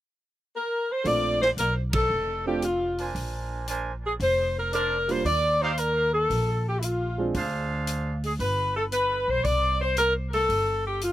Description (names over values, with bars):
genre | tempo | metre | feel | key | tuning
jazz, big band swing | 114 BPM | 4/4 | swing 69% on 8ths | Bb major | A4 = 440 Hz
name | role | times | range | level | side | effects
mellow saxophone section | melody | 0.5-11.1 s | E4 to D5 | -24 LUFS | left 1 dB | none
warm baby grand piano | accompaniment | 1.0-7.3 s | G3 to F4 | -30 LUFS | right 4 dB | none
upright bass | bass | 1.0-11.1 s | F1 to Eb2 | -30 LUFS | equal | none
swinging big-band drum kit | drums | 1.1-11.1 s | hi-hat, kick drum, ride cymbal, snare drum | -36 LUFS | equal | none
mellow trumpet section | stabs | 3.0-8.2 s | D4 to Ab5 | -32 LUFS | right 4 dB | slapback echo
room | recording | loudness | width
little or no reverb | recorded outdoors, with no room sound | -23 LUFS | side -14 dB against mid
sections
0.0-1.1 A section; 1.1-11.1 B section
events
band accent 1.8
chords
0.0 N.C.; 1.1 Bbmaj9; 3.1 Bb9; 5.2 Ebsus2; 7.3 Dm7b5; 8.4 G; 9.4 C5